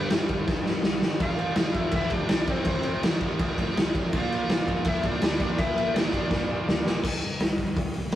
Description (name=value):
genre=punk rock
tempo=165 BPM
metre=4/4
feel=straight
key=C major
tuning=A4 = 445 Hz
part: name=biting overdriven guitar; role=melody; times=0.0-6.8 s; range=C4 to F5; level=-30 LUFS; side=left 1 dB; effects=none
part: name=distorted electric guitar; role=riff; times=0.0-8.2 s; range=F2 to C4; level=-36 LUFS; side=left 3 dB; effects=distortion
part: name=raw garage guitar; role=riff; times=0.0-7.0 s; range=F2 to Bb3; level=-32 LUFS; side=right 4 dB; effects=overdrive
part: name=picked electric bass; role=bass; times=0.0-8.2 s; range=G1 to Bb2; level=-36 LUFS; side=equal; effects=none
part: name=raw garage drum kit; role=drums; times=0.1-8.2 s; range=crash cymbal, hi-hat, kick drum, snare drum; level=-25 LUFS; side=equal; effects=none
room=light reverb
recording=rough rehearsal-room recording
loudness=-23 LUFS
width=side -12 dB against mid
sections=0.0-7.0 A section; 7.0-8.2 B section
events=drum fill 0.5-1.2, 6.3-7.0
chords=0.0 G; 1.2 F/A; 4.1 Bb; 7.0 C5